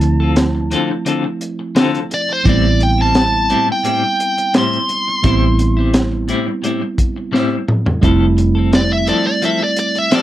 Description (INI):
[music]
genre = straight-eighth soul blues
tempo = 86 BPM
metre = 4/4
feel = swing 54% on 16ths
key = A minor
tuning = A4 = 441 Hz
[part]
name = dark smooth lead guitar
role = melody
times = 0.0-10.2 s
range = C5 to C6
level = -17 LUFS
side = equal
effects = overdrive, slapback echo
[part]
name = tine electric piano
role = accompaniment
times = 0.0-10.2 s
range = F3 to E4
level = -20 LUFS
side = right 4 dB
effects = none
[part]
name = clean electric guitar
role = stabs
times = 0.0-10.2 s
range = A2 to A4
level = -20 LUFS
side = left 4 dB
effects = tremolo
[part]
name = vintage muted fingered electric bass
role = bass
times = 0.0-9.1 s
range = F1 to D2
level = -16 LUFS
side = equal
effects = none
[part]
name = crunchy breakbeat drum kit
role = drums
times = 0.0-10.2 s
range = hi-hat, kick drum, snare drum, toms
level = -17 LUFS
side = equal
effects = none
[sound]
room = little or no reverb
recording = dry, close 1970s-style studio recording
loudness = -13 LUFS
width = side -13 dB against mid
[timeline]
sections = 0.0-10.2 A section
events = drum fill 7.3-8.0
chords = 0.0 Dm7; 2.5 Am7; 8.0 Fmaj7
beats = 0.37 1.06 1.76 | 2.46 3.15 3.85 4.55 | 5.24 5.94 6.63 7.33 | 8.03 8.72 9.42 10.12